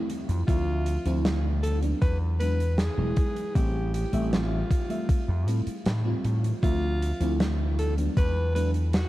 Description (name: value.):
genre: vaporwave.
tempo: 78 BPM.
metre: 4/4.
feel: straight.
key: D minor.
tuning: A4 = 440 Hz.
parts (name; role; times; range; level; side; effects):
FM electric piano with soft pad layer; accompaniment; 0.0-8.7 s; F3 to E5; -32 LUFS; equal; analog chorus.
huge arena drum kit; drums; 0.1-9.1 s; hi-hat, snare drum; -32 LUFS; equal; none.
vintage slap bass; bass; 0.3-9.0 s; E1 to A2; -26 LUFS; equal; none.
clear alto saxophone; melody; 0.5-9.1 s; F4 to B4; -34 LUFS; equal; tape echo.
electronic kick drum; drums; 0.5-8.3 s; none; -24 LUFS; equal; overdrive.
room: small room ambience.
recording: dark, warm production.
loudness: -24 LUFS.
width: side -16 dB against mid.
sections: 0.0-9.1 A section.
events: none.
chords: 0.5 Dm7; 2.0 E7; 3.6 Am7; 4.7 Fmaj7; 6.6 Dm7; 8.2 E7.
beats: | 0.48 1.25 2.02 2.79 | 3.56 4.33 5.09 5.86 | 6.63 7.40 8.17 8.94.